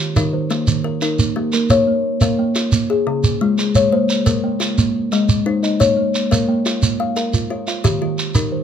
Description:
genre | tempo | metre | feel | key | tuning
southern african traditional, mbira-style interlocking cycle | 117 BPM (dotted quarters) | 12/8 | straight | Bb dorian | A4 = 437 Hz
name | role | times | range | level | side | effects
kalimba | arpeggios | 0.0-8.6 s | Db3 to F5 | -18 LUFS | left 6 dB | none
kalimba | arpeggios | 0.0-8.6 s | Db3 to G5 | -22 LUFS | right 7 dB | none
shekere | percussion | 0.2-8.5 s | none | -19 LUFS | right 3 dB | none
room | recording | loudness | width
light reverb | close, detailed microphones | -15 LUFS | side -8 dB against mid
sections
0.0-8.6 A section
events
none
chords
0.0 Eb; 1.7 Bbm; 2.7 Db; 3.8 Bbm; 4.8 Ab; 5.8 Bbm; 7.8 Eb

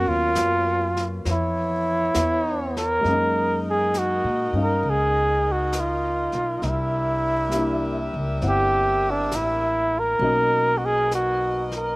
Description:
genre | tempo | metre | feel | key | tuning
jazz ballad | 67 BPM | 4/4 | swing 69% on 8ths | unclear | A4 = 438 Hz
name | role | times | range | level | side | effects
warm flugelhorn | melody | 0.0-12.0 s | D4 to A#4 | -22 LUFS | right 1 dB | none
warm upright piano | accompaniment | 0.0-12.0 s | F#3 to F#5 | -30 LUFS | left 2 dB | none
warm saxophone section | sustained chords | 0.0-12.0 s | B2 to E5 | -32 LUFS | left 1 dB | none
upright bass | bass | 0.0-12.0 s | G1 to A#2 | -28 LUFS | equal | none
jazz brush drum kit | drums | 0.4-12.0 s | brushed snare drum, hi-hat, snare drum | -34 LUFS | left 1 dB | none
room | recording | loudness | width
little or no reverb | recorded outdoors, with no room sound | -20 LUFS | side -22 dB against mid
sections
0.0-3.0 A section; 3.0-12.0 B section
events
none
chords
0.0 G#m11 (rootless); 1.3 C#7#9; 3.0 F#6; 6.6 C13; 10.2 Bmaj7

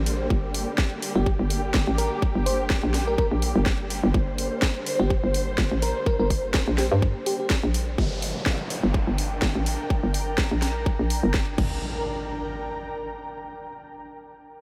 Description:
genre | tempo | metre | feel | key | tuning
bass house | 125 BPM | 4/4 | swing 55% on 16ths | G minor | A4 = 440 Hz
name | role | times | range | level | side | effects
warm studio string section | sustained chords | 0.0-8.0 s | D3 to C5 | -32 LUFS | equal | sidechain pumping, low-pass filter
hollow knocking FM bass | bass | 0.0-11.8 s | G1 to G2 | -27 LUFS | equal | overdrive, sidechain pumping
garage drum kit | drums | 0.1-11.7 s | crash cymbal, hi-hat, snare drum | -33 LUFS | equal | overdrive
electronic kick drum | drums | 0.3-11.7 s | none | -26 LUFS | equal | overdrive
bell-like FM electric piano | melody | 1.2-7.5 s | G4 to C5 | -34 LUFS | equal | chorus, tape echo
downlifter and impact | sound effects | 8.0-13.5 s | none | -37 LUFS | equal | none
ethereal airy pad | texture | 8.9-13.7 s | D4 to Bb5 | -35 LUFS | equal | ensemble chorus, built-in reverb, sidechain pumping
room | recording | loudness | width
light reverb | none | -25 LUFS | mono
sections
0.0-8.0 A section; 8.0-11.8 B section; 11.8-13.7 C section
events
drop 0.0-8.0; filter sweep on FM bass 8.0-11.8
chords
0.0 Gm

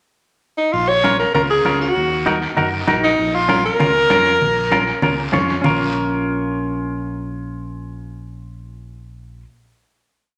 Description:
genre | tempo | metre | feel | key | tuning
latin, cumbia | 196 BPM | 4/4 | straight | Bb minor | A4 = 444 Hz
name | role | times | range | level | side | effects
bright alto saxophone | melody | 0.6-5.3 s | Eb4 to Db5 | -19 LUFS | equal | none
fingered electric bass | bass | 0.7-9.4 s | Bb1 to Gb2 | -30 LUFS | equal | none
congas | percussion | 0.7-5.7 s | none | -27 LUFS | equal | none
guiro | percussion | 0.7-5.7 s | none | -33 LUFS | equal | none
semi-hollow electric guitar | accompaniment | 1.0-9.4 s | Db4 to Db5 | -22 LUFS | equal | spring reverb
room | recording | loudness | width
wet large studio reverb, RT60 1.0 s | none | -18 LUFS | mono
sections
0.0-0.7 pickup bar; 0.7-5.6 A section; 5.6-8.1 final chord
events
none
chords
0.0 N.C.; 0.7 Bbm; 2.0 Ebm; 3.2 Bbm

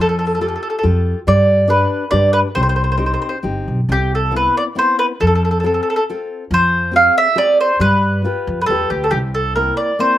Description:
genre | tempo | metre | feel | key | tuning
italian folk, Italian serenade | 138 BPM | 3/4 | straight | C harmonic minor, C major from 3.9 s | A4 = 440 Hz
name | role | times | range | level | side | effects
mandolin | melody | 0.0-10.2 s | G4 to F5 | -15 LUFS | right 1 dB | none
nylon-string guitar | accompaniment | 0.0-10.2 s | C3 to B4 | -22 LUFS | left 3 dB | none
upright bass | bass | 0.0-9.7 s | G1 to G2 | -19 LUFS | equal | none
room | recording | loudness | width
little or no reverb | recorded outdoors, with no room sound | -14 LUFS | side -13 dB against mid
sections
0.0-3.9 A section; 3.9-10.2 B section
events
none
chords
0.0 Fadd9; 1.3 G; 2.6 Cm; 3.9 Cmaj7; 5.2 F; 6.5 Fm; 7.8 G7; 9.1 C7

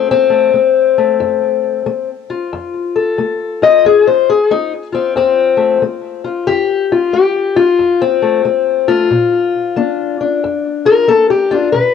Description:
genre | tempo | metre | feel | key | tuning
acoustic country blues, solo or duo | 91 BPM | 4/4 | swing 64% on 8ths | F major | A4 = 440 Hz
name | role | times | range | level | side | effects
fingerpicked steel-string acoustic guitar | solo | 0.0-11.9 s | F2 to Eb5 | -11 LUFS | left 6 dB | tape echo
room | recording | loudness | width
moderate small room ambience, RT60 0.5 s | home recording on cassette | -11 LUFS | side -6 dB against mid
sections
0.0-11.9 A section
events
steel-string acoustic guitar solo 0.0-11.9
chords
0.0 F; 9.1 Bb

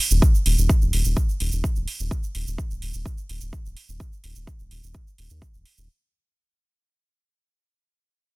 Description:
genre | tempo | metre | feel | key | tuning
melodic techno | 127 BPM | 4/4 | straight | unclear | A4 = 440 Hz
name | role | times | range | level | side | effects
round analog bass | bass | 0.1-5.9 s | Eb1 to Eb2 | -23 LUFS | equal | sidechain pumping
egg shaker | percussion | 0.1-5.9 s | none | -34 LUFS | right 8 dB | none
electronic kick drum | drums | 0.2-5.5 s | none | -22 LUFS | equal | none
electronic hi-hat | drums | 0.5-5.8 s | none | -26 LUFS | right 4 dB | sidechain pumping on hats, sidechain pumping on toms
room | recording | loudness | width
digital ambience | dense, heavily limited modern master | -20 LUFS | side -25 dB against mid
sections
0.0-5.9 A section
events
fade-out 0.0-5.9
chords
none

